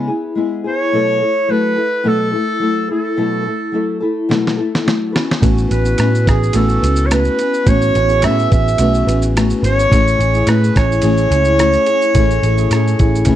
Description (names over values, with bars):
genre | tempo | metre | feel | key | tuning
indie pop, bedroom pop | 107 BPM | 4/4 | swing 55% on 16ths | unclear | A4 = 440 Hz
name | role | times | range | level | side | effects
nylon-string guitar | accompaniment | 0.0-13.4 s | B2 to B4 | -18 LUFS | left 3 dB | lush chorus, warbly pitch drift
clear clarinet | melody | 0.7-13.4 s | G#4 to E5 | -17 LUFS | right 1 dB | lush chorus, slapback echo
dusty soul sampler-style drum kit | drums | 4.3-13.4 s | kick drum, ride cymbal, rim click, shaker, snare drum | -18 LUFS | equal | none
mellow tine electric piano | accompaniment | 5.4-13.4 s | A3 to B4 | -22 LUFS | right 4 dB | medium stereo tremolo, cassette tape
vintage muted picked electric bass | bass | 5.4-13.4 s | G#1 to A2 | -16 LUFS | equal | none
room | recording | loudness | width
little or no reverb | dry, close 1970s-style studio recording | -12 LUFS | side -12 dB against mid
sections
0.0-13.4 A section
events
drum fill 4.3-5.4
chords
0.0 C#m7; 0.9 B7sus4; 5.1 A69; 9.9 Amaj7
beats
0.37 | 0.93 1.50 2.06 2.62 | 3.18 3.74 4.30 4.86 | 5.42 5.98 6.54 7.11 | 7.67 8.23 8.79 9.35 | 9.91 10.47 11.03 11.59 | 12.15 12.71 13.27